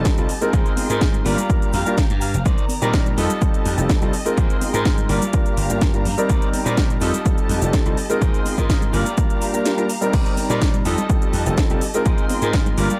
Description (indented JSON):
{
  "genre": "filtered disco house",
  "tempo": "125 BPM",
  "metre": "4/4",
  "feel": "straight",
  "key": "unclear",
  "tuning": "A4 = 438 Hz",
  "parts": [
    { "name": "dark concert grand piano", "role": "accompaniment", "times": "0.0-12.9 s", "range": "G3 to D5", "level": "-25 LUFS", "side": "equal", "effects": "phaser, sidechain pumping" },
    { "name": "muted studio string section", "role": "sustained chords", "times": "0.0-13.0 s", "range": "Eb3 to C6", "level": "-32 LUFS", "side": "equal", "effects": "vintage 12-bit sampler grit, sidechain pumping" },
    { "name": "electric guitar at the edge of break-up", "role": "riff", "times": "0.0-13.0 s", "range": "Eb4 to G5", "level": "-32 LUFS", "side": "equal", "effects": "sidechain pumping" },
    { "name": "slap bass", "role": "bass", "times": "0.0-12.9 s", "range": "F1 to Bb2", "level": "-26 LUFS", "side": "equal", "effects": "tube saturation, sidechain pumping" },
    { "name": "tube shaker and congas", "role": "percussion", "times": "0.0-13.0 s", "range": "none", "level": "-33 LUFS", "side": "equal", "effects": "sidechain pumping on perc" },
    { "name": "electronic kick drum", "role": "drums", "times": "0.1-12.6 s", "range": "none", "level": "-22 LUFS", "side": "equal", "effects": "overdrive" },
    { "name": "house drum kit", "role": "drums", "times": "0.1-13.0 s", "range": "crash cymbal, hi-hat, shaker, snare drum", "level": "-30 LUFS", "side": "equal", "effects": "overdrive, sidechain pumping on hats, sidechain pumping on perc, sidechain pumping on cymbals" }
  ],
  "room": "little or no reverb",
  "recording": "dry, gritty hardware recording",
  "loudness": "-19 LUFS",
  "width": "mono",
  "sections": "0.0-13.0 A section",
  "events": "clean electric guitar fill 1.5-2.5",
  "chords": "0.0 F9; 0.5 Bb9sus4; 1.3 Gm7; 2.5 Cm9; 3.2 F9; 4.4 Bb9sus4; 5.1 Gm7; 6.3 Cm9; 7.0 F9; 8.2 Bb9sus4; 8.9 Gm7; 10.1 Cm9; 10.9 F9; 12.1 Bb9sus4"
}